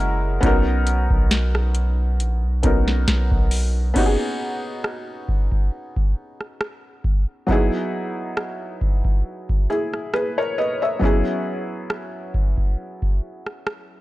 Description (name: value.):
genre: contemporary R&B.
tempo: 68 BPM.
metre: 4/4.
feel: swing 54% on 16ths.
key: B major.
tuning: A4 = 440 Hz.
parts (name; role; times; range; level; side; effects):
felt-muted upright piano; accompaniment; 0.0-14.0 s; F#3 to E5; -24 LUFS; left 1 dB; none.
long sustained 808-style bass; bass; 0.0-3.9 s; F#1 to B1; -20 LUFS; equal; none.
booming analog drum machine; drums; 0.4-13.9 s; crash cymbal, hi-hat, kick drum, rim click, snare drum; -20 LUFS; equal; none.
room: little or no reverb.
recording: dry, gritty hardware recording.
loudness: -19 LUFS.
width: side -17 dB against mid.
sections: 0.0-4.0 A section; 4.0-14.0 B section.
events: none.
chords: 0.4 Bmaj9; 4.0 B69; 7.5 Emaj9; 11.0 F#7sus4.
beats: | 0.43 1.31 2.19 3.08 | 3.96 4.84 5.72 6.61 | 7.49 8.37 9.25 10.13 | 11.02 11.90 12.78 13.66.